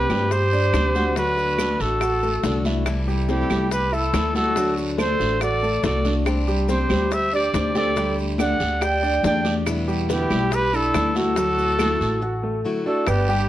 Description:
latin, Cuban son and guajira; 141 BPM; 4/4; straight; A4 = 439 Hz
breathy trumpet; melody; 0.0-13.5 s; G4 to G5; -23 LUFS; equal
mellow hollow jazz flute; second line; 0.0-13.5 s; D4 to D5; -28 LUFS; right 3 dB
picked plugged-in steel-string acoustic guitar; accompaniment; 0.0-13.5 s; B2 to A4; -29 LUFS; left 2 dB
warm grand piano; arpeggios; 0.0-13.5 s; F#3 to G5; -27 LUFS; equal; slapback echo
upright bass; bass; 0.0-13.5 s; G1 to G2; -25 LUFS; equal
bongos; percussion; 0.1-13.5 s; -30 LUFS; left 6 dB
claves; percussion; 0.1-13.3 s; -34 LUFS; right 7 dB
congas; percussion; 0.1-13.5 s; -30 LUFS; left 2 dB
guiro; percussion; 0.1-13.5 s; -37 LUFS; right 4 dB
maracas; percussion; 0.1-13.5 s; -42 LUFS; left 5 dB
moderate studio reverb, RT60 0.8 s; worn, warbling old tape, cassette tape, warbly pitch drift; -19 LUFS; side -13 dB against mid
0.0-13.1 A section
break 12.2-13.1
0.0 Csus2; 1.2 D; 2.9 Am7/C; 4.6 D; 6.3 Csus2; 8.0 Dsus4; 9.7 Em7; 11.4 Dadd9

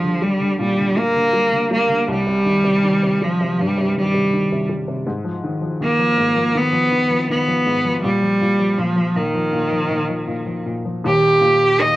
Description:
pop; 80 BPM; 4/4; straight; Eb major; A4 = 440 Hz
bright cello; melody; 0.0-12.0 s; Eb3 to Eb5; -16 LUFS; equal; cassette tape
warm upright piano; accompaniment; 0.0-12.0 s; Eb1 to D4; -23 LUFS; left 1 dB; cassette tape
light reverb, small room ambience; home recording on cassette; -16 LUFS; side -16 dB against mid
0.0-11.0 A section
0.0 Ebmaj7; 2.1 Cm; 5.1 Abm6; 8.0 Bbsus4; 11.0 Eb

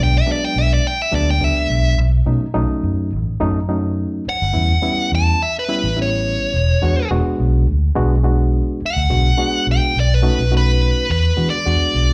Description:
straight-eighth soul blues; 105 BPM; 4/4; straight; E mixolydian; A4 = 439 Hz
dark smooth lead guitar; melody; 0.0-12.1 s; B4 to A5; -22 LUFS; equal; overdrive, plate reverb
reed electric piano; accompaniment; 0.0-12.1 s; F#3 to F#4; -25 LUFS; equal; plate reverb, slapback echo
vintage muted fingered electric bass; bass; 0.0-12.1 s; E1 to E3; -19 LUFS; equal
light reverb; live gig heard through the venue's PA, club reverb; -17 LUFS; mono
0.0-11.1 A section; 11.1-12.1 B section
lead electric guitar solo 0.0-11.1
0.0 E7; 2.0 B7; 4.3 A7; 6.5 E7; 9.9 B7; 11.1 E7

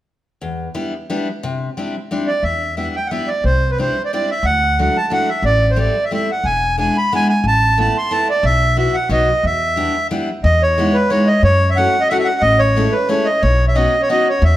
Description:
musette waltz; 180 BPM; 3/4; swing 53% on 8ths; E minor, E major from 10.4 s; A4 = 440 Hz
picked steel-string acoustic guitar; accompaniment; 0.4-14.3 s; E2 to G#4; -21 LUFS; left 1 dB
accordion; melody; 2.3-14.6 s; B4 to C6; -16 LUFS; right 1 dB
upright bass; bass; 2.4-14.6 s; E1 to F#2; -17 LUFS; equal
moderate recital hall reverb, RT60 1.4 s; -14 LUFS; side -14 dB against mid
0.4-2.4 A section; 2.4-10.4 B section; 10.4-14.6 C section
0.4 Em7; 1.4 Cadd9; 2.4 Em7; 3.4 Cadd9; 4.4 Dadd9; 5.4 Am7; 6.4 E7; 7.5 Amadd9; 8.4 Bsus4; 9.1 B; 9.4 Em7; 10.4 Emaj7; 11.4 F#m7; 12.4 Amaj7; 13.4 Badd9

